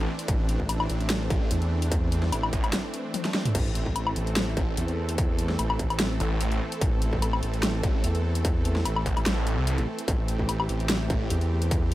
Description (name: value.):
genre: heavy wobble dubstep.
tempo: 147 BPM.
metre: 4/4.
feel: swing 54% on 16ths, half-time.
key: A minor.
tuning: A4 = 439 Hz.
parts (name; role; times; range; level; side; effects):
supersaw pad; sustained chords; 0.0-11.9 s; E3 to A4; -33 LUFS; right 1 dB; sidechain pumping.
snarling distorted saw bass; bass; 0.0-11.3 s; A1 to C2; -28 LUFS; equal; distortion, overdrive.
dubstep drum kit; drums; 0.2-11.9 s; crash cymbal, hi-hat, snare drum, toms, woodblock; -29 LUFS; left 1 dB; none.
wobble bass; bass; 0.3-11.9 s; A1 to E2; -27 LUFS; equal; chorus, overdrive.
electronic kick drum; drums; 0.3-11.8 s; none; -28 LUFS; equal; distortion.
room: little or no reverb.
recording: none.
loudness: -24 LUFS.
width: side -16 dB against mid.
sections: 0.0-11.9 A section.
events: break 2.7-3.5; drum fill 3.1-3.5.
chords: 0.0 Am.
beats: | 0.28 0.69 1.10 1.51 | 1.92 2.33 2.73 3.14 | 3.55 3.96 4.37 4.77 | 5.18 5.59 6.00 6.41 | 6.81 7.22 7.63 8.04 | 8.45 8.86 9.26 9.67 | 10.08 10.49 10.90 11.30 | 11.71.